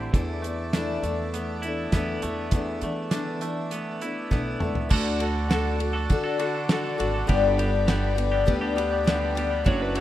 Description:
folk rock and heartland rock; 101 BPM; 4/4; straight; A4 = 440 Hz
picked old ladder-braced acoustic guitar; accompaniment; 0.0-10.0 s; E2 to A4; -28 LUFS; left 5 dB
accordion; sustained chords; 0.0-10.0 s; E4 to E5; -37 LUFS; right 1 dB
twangy electric guitar; riff; 0.0-10.0 s; E2 to A4; -31 LUFS; right 2 dB
upright bass; bass; 0.0-10.0 s; F#1 to E3; -29 LUFS; right 1 dB
damped 70s drum kit; drums; 0.1-10.0 s; crash cymbal, hi-hat, kick drum, ride cymbal, snare drum, toms; -27 LUFS; right 1 dB
electric slide guitar; second line; 9.7-10.0 s; B4 to C#5; -30 LUFS; right 4 dB; slapback echo
light reverb, studio reverb; rough home demo mix; -23 LUFS; side -13 dB against mid
0.0-4.9 A section; 4.9-10.0 B section
drum fill 4.3-4.9
0.1 E7sus4; 4.9 D; 7.3 G
| 0.13 0.73 1.33 1.93 | 2.53 3.12 3.72 4.32 | 4.91 5.51 6.10 6.70 | 7.29 7.88 8.48 9.07 | 9.66

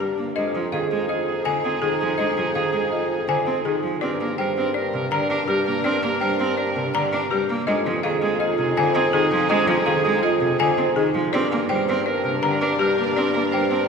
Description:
classical, minimalist pattern music; 164 BPM; 5/4; straight; F dorian; A4 = 440 Hz
folk marimba with hard mallets; melody; 0.0-13.8 s; G4 to Bb5; -26 LUFS; left 5 dB
bright oboe; second line; 0.0-13.8 s; Ab4 to Bb4; -27 LUFS; right 2 dB
rich cello; accompaniment; 0.0-13.8 s; C3 to D4; -27 LUFS; right 1 dB
rich studio string section; sustained chords; 0.0-13.9 s; D4 to Bb4; -31 LUFS; left 1 dB
vibraphone with medium hard mallets; arpeggios; 0.0-13.8 s; D4 to D5; -26 LUFS; right 4 dB
dark bassoon; bass; 0.0-13.9 s; F2 to G2; -27 LUFS; equal
wet cathedral reverb, RT60 4.8 s; recorded in a church or concert hall; -19 LUFS; side -5 dB against mid
0.4-13.9 A section
0.4 Fm7; 4.0 Gm; 7.7 Fm7; 11.3 Gm
| 0.36 0.72 1.09 1.46 1.82 | 2.19 2.55 2.92 3.29 3.65 | 4.02 4.38 4.75 5.11 5.48 | 5.85 6.21 6.58 6.94 7.31 | 7.67 8.04 8.41 8.77 9.14 | 9.50 9.87 10.24 10.60 10.97 | 11.33 11.70 12.06 12.43 12.80 | 13.16 13.53

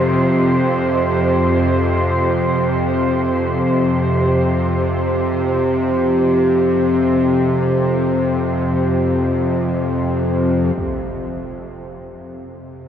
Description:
dark ambient drone; free time; A4 = 440 Hz
muted symphonic cello section; sustained chords; 0.0-10.8 s; F3 to C5; -23 LUFS; equal
bowed-like drone; drone; 0.0-12.9 s; F2 to C3; -16 LUFS; equal; built-in reverb
impact; percussion; 10.8-11.0 s; -32 LUFS; equal; low-pass filter on sfx
wet huge ambient reverb, RT60 7.3 s; worn, warbling old tape, cassette tape, warbly pitch drift; -15 LUFS; side -9 dB against mid
0.0-10.8 A section; 10.8-12.9 B section
fade-out on cello section 0.0-10.8
0.0 F5
free time

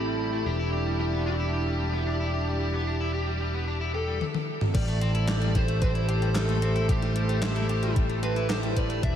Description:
synthwave; 112 BPM; 4/4; straight; A minor; A4 = 440 Hz
fuzz lead guitar; melody; 0.0-9.2 s; E4 to E5; -33 LUFS; right 1 dB; distortion, ping-pong delay
chorused pulse-width pad; sustained chords; 0.0-9.2 s; A3 to D5; -32 LUFS; right 2 dB; sidechain pumping
electric guitar at the edge of break-up; arpeggios; 0.0-9.1 s; G3 to G4; -35 LUFS; left 4 dB; ping-pong delay
picked electric bass; bass; 0.0-9.2 s; E1 to A1; -28 LUFS; equal; tube saturation, low-pass filter
gated 80s digital drum machine; drums; 4.2-9.1 s; crash cymbal, handclaps, hi-hat, snare drum, toms; -32 LUFS; equal; gated reverb, gated reverb snare, overdrive
electronic kick drum; drums; 4.7-9.1 s; -26 LUFS; equal; overdrive
moderate huge ambient reverb, RT60 7.7 s; dreamy mix soaked in reverb; -24 LUFS; side -9 dB against mid
0.0-4.7 A section; 4.7-9.2 B section
drum fill 4.2-4.7
0.5 Em7; 4.7 Am7
| 0.46 1.00 1.53 2.07 | 2.60 3.14 3.68 4.21 | 4.75 5.28 5.82 6.36 | 6.89 7.43 7.96 8.50 | 9.03

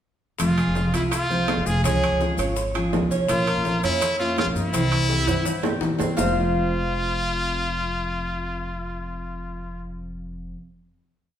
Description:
latin, Cuban son and guajira; 166 BPM; 4/4; straight; F harmonic minor; A4 = 437 Hz
brilliant trumpet; melody; 0.4-9.8 s; E4 to Ab4; -27 LUFS; left 1 dB
picked steel-string acoustic guitar; accompaniment; 0.4-10.6 s; F2 to F4; -26 LUFS; equal
upright bass; bass; 0.4-10.5 s; F1 to Bb2; -28 LUFS; equal
bongos; percussion; 0.4-6.3 s; -34 LUFS; left 5 dB
maracas; percussion; 0.4-6.3 s; -36 LUFS; left 5 dB
timbales; percussion; 0.4-6.3 s; -30 LUFS; right 5 dB
Cuban tres; arpeggios; 0.6-10.5 s; C4 to F5; -28 LUFS; right 2 dB
wet large studio reverb, RT60 1.2 s; band playing live in one room; -20 LUFS; side -10 dB against mid
0.4-6.2 verse; 6.2-9.1 final chord
drum fill 5.1-6.2
0.4 Fm; 1.8 Db; 3.3 Bbm; 4.7 C; 6.2 Fm
| 0.40 0.76 1.12 1.49 | 1.85 2.21 2.57 2.93 | 3.29 3.65 4.02 4.38 | 4.74 5.10 5.46 5.82 | 6.18 6.54 6.90 7.26 | 7.62 7.98 8.34 8.70

